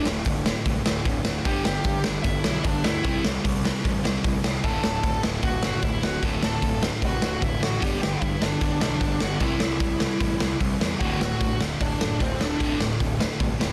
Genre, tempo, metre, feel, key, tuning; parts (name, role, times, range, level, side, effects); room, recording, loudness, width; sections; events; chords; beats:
punk rock; 151 BPM; 4/4; straight; D mixolydian; A4 = 442 Hz
smooth overdriven lead guitar; melody; 0.0-12.8 s; C4 to A5; -32 LUFS; equal
sludgy distorted guitar; riff; 0.0-13.7 s; D2 to C4; -31 LUFS; equal; overdrive
fuzz picked electric bass; bass; 0.1-13.7 s; D1 to G2; -33 LUFS; equal; overdrive
raw garage drum kit; drums; 0.1-13.7 s; hi-hat, kick drum, snare drum; -28 LUFS; equal
crunchy overdriven guitar; riff; 11.0-13.7 s; D2 to D3; -34 LUFS; equal
light reverb; dense, heavily limited modern master; -25 LUFS; mono
0.0-13.7 A section
0.0 D5; 1.5 G5; 3.0 C; 4.6 D; 7.8 G5; 9.4 C; 11.0 D
0.27 0.66 1.06 | 1.46 1.85 2.25 2.65 | 3.05 3.44 3.84 4.24 | 4.64 5.04 5.43 5.83 | 6.23 6.63 7.03 7.42 | 7.82 8.22 8.62 9.02 | 9.41 9.81 10.21 10.61 | 11.01 11.41 11.80 12.20 | 12.60 13.00 13.40